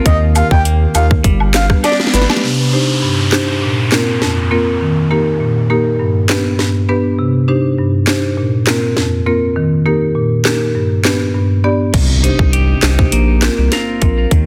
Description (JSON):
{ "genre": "dancehall", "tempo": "101 BPM", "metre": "4/4", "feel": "straight", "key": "C minor", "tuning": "A4 = 440 Hz", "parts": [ { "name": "marimba with medium mallets", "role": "accompaniment", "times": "0.0-14.1 s", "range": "F2 to D5", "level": "-17 LUFS", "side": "equal", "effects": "sidechain pumping" }, { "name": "clean electric guitar", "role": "arpeggios", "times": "0.0-2.5, 11.9-14.5 s", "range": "C3 to Bb4", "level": "-22 LUFS", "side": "equal", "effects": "delay" }, { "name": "breathy flute-like synth lead", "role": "melody", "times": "0.1-2.3 s", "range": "B4 to G5", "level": "-21 LUFS", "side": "equal", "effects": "chorus, delay" }, { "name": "saturated sub bass", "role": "bass", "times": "0.1-2.3, 11.9-14.5 s", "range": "G1 to Eb2", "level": "-16 LUFS", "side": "equal", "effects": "none" }, { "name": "island pop drum kit", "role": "drums", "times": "0.1-14.5 s", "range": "crash cymbal, handclaps, hi-hat, kick drum, rim click, snare drum", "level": "-17 LUFS", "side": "equal", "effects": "none" }, { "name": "cabasa and woodblock", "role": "percussion", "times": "0.4-2.4 s", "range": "none", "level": "-25 LUFS", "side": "equal", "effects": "none" }, { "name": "downlifter and impact", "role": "sound effects", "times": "2.4-7.2, 12.0-14.3 s", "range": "none", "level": "-26 LUFS", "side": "equal", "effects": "none" } ], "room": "light reverb, digital ambience", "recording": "dense, heavily limited modern master", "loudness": "-14 LUFS", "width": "mono", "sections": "0.0-2.4 A section; 2.4-11.9 B section; 11.9-14.5 C section", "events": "drum fill 1.8-2.4; drums muted 11.3-11.9; impact 11.9-14.3", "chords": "0.1 Eb; 1.2 G; 2.4 Cmadd9; 3.6 Bbsus2; 4.8 Eb; 6.0 G; 7.2 Cmadd9; 8.4 Bbsus2; 9.6 Eb; 10.8 G; 11.9 Cmadd9; 13.1 Bbsus2" }